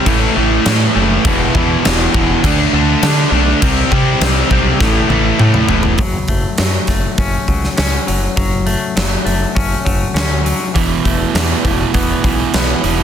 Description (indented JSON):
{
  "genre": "quiet-loud alternative rock",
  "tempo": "101 BPM",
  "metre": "4/4",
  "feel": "straight",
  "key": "unclear",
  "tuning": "A4 = 440 Hz",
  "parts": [
    { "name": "overdriven electric guitar", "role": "riff", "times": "0.0-6.0, 10.7-13.0 s", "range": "E2 to D4", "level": "-16 LUFS", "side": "right 10 dB", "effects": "none" },
    { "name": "tight distorted guitar", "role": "riff", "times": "0.0-6.0 s", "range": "E2 to D4", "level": "-17 LUFS", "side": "left 15 dB", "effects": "distortion" },
    { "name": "growling fingered electric bass", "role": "bass", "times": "0.1-13.0 s", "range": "E1 to D3", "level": "-18 LUFS", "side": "equal", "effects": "overdrive" },
    { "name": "huge arena drum kit", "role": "drums", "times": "0.1-13.0 s", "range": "crash cymbal, hi-hat, kick drum, snare drum, toms", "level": "-17 LUFS", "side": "equal", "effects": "none" },
    { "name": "twangy electric guitar", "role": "arpeggios", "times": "6.0-13.0 s", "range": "E3 to C#4", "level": "-20 LUFS", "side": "left 6 dB", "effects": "harmonic tremolo, analog delay" }
  ],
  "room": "studio reverb",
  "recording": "dense, heavily limited modern master",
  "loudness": "-12 LUFS",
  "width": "side -9 dB against mid",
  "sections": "0.0-6.0 A section; 6.0-13.0 B section",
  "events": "drum fill 4.8-6.0",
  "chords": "0.1 A5; 1.3 E5; 2.4 D5; 3.6 C5; 4.8 A5; 6.0 F#m; 10.8 Esus4",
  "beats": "0.07 0.66 | 1.25 1.84 2.44 3.03 | 3.62 4.21 4.80 5.40 | 5.99 6.59 7.18 7.78 | 8.37 8.97 9.56 10.16 | 10.75 11.35 11.94 12.54"
}